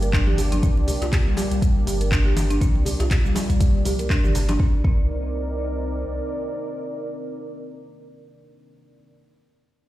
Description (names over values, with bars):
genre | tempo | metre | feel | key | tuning
afro house | 121 BPM | 4/4 | swing 56% on 16ths | C minor | A4 = 440 Hz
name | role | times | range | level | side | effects
dark analog pad | sustained chords | 0.0-9.1 s | Bb3 to D5 | -31 LUFS | right 1 dB | chorus, sidechain pumping
folk marimba with medium mallets | arpeggios | 0.0-5.0 s | G3 to Bb4 | -27 LUFS | equal | sidechain pumping, dub echo
warm sub bass | bass | 0.0-6.0 s | G1 to C2 | -24 LUFS | equal | sidechain pumping
afro-pop drum kit | drums | 0.0-4.6 s | handclaps, hi-hat, shaker, toms | -29 LUFS | left 1 dB | none
congas | percussion | 0.0-4.6 s | none | -32 LUFS | right 2 dB | none
electronic kick drum | drums | 0.1-5.0 s | none | -20 LUFS | equal | none
djembe | percussion | 0.4-4.6 s | none | -34 LUFS | left 2 dB | none
room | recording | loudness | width
little or no reverb | played on a big sound system in a bare room, stone room reverb | -19 LUFS | side -15 dB against mid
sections
0.0-4.6 A section; 4.6-8.6 B section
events
drop 0.0-4.6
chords
0.0 Gm; 4.6 Cm9